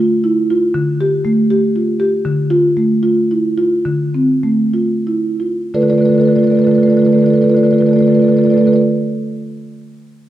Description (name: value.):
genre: classical, contemporary piece for solo marimba.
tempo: 59-79 BPM (dotted quarters).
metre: 6/8.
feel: straight.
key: D dorian.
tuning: A4 = 440 Hz.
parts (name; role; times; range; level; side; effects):
marimba with soft mallets; solo; 0.0-8.8 s; D3 to D5; -12 LUFS; right 1 dB; none.
room: moderate scoring stage reverb, RT60 1.8 s.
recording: none.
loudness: -11 LUFS.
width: side -13 dB against mid.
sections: 0.0-5.7 A section; 5.7-9.8 B section.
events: slowing down 1.5-5.7.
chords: 0.0 Dmadd9; 0.7 Dmadd11; 2.3 Dm7; 5.7 Dm6.